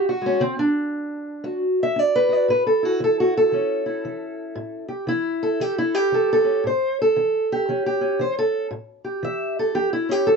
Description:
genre	acoustic country blues, solo or duo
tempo	116 BPM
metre	4/4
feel	swing 62% on 8ths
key	A mixolydian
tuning	A4 = 440 Hz
part	fingerpicked steel-string acoustic guitar	solo	0.0-10.4 s	A2 to E5	-19 LUFS	equal	none
room	moderate studio reverb, RT60 0.5 s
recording	dark, warm production, nothing above 8.0 kHz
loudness	-19 LUFS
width	side -5 dB against mid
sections	0.0-6.6 A section; 6.6-10.4 B section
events	steel-string acoustic guitar solo 6.6-10.4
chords	0.4 D; 2.5 A7

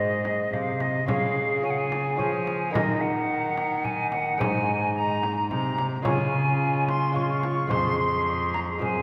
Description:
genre	classical, renaissance-style consort dance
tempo	108 BPM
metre	3/4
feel	straight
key	unclear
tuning	A4 = 440 Hz
part	silver concert flute	melody	0.0-9.0 s	Eb5 to Db6	-29 LUFS	equal	none
part	tenor recorder	second line	0.0-9.0 s	Eb4 to Ab4	-34 LUFS	equal	none
part	lute	accompaniment	0.0-9.0 s	F2 to Db5	-34 LUFS	equal	none
part	rich cello	bass	0.0-9.0 s	F2 to F3	-32 LUFS	equal	none
part	frame drum	percussion	0.2-9.0 s	none	-36 LUFS	equal	none
room	wet church reverb, RT60 2.5 s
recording	none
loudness	-25 LUFS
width	mono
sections	0.0-9.0 A section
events	none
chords	0.0 Ab; 1.1 Db; 2.7 Ebm; 4.4 Ab; 6.1 Db; 7.7 Fm

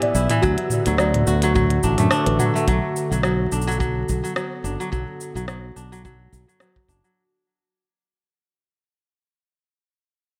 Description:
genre	folktronica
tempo	107 BPM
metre	4/4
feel	swing 56% on 16ths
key	unclear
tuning	A4 = 440 Hz
part	small celesta	second line	0.0-2.7 s	D4 to F#5	-28 LUFS	equal	tape echo
part	warbly tape-like pad	sustained chords	0.0-7.2 s	D3 to B4	-32 LUFS	equal	chorus, built-in reverb
part	kora	arpeggios	0.0-8.6 s	E3 to F#4	-27 LUFS	equal	low-pass filter, delay
part	minimal click drum kit	drums	0.0-7.1 s	hi-hat, rim click, shaker, toms	-27 LUFS	equal	none
part	flickering grainy texture	texture	0.0-2.7 s	E5	-42 LUFS	equal	none
part	modern bright fingered electric bass	bass	0.1-7.0 s	F#1 to F#2	-25 LUFS	equal	none
part	kick drum	drums	0.4-7.0 s	none	-28 LUFS	equal	none
room	light reverb, small room reverb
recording	vinyl crackle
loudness	-21 LUFS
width	mono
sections	0.0-2.7 A section; 2.7-7.2 B section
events	kick drops out 2.1-2.7; fade-out 2.7-7.2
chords	0.4 D; 2.7 Bm7

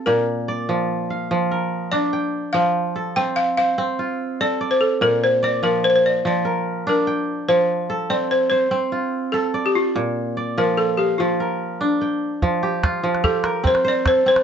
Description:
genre	west african traditional, West African string and xylophone music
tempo	97 BPM (dotted quarters)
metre	12/8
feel	straight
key	F major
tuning	A4 = 440 Hz
part	balafon	melody	0.0-14.4 s	F4 to G5	-19 LUFS	left 1 dB	plate reverb
part	kora	arpeggios	0.0-14.4 s	Bb2 to G5	-22 LUFS	right 1 dB	none
part	calabash	percussion	12.4-14.4 s	none	-22 LUFS	right 1 dB	none
room	moderate studio ambience, RT60 0.5 s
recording	nothing above 7.8 kHz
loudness	-18 LUFS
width	side -7 dB against mid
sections	0.0-12.4 A section; 12.4-14.4 B section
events	none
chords	0.1 Bb; 2.5 F; 5.0 Bb; 7.5 F; 10.0 Bb; 12.4 F

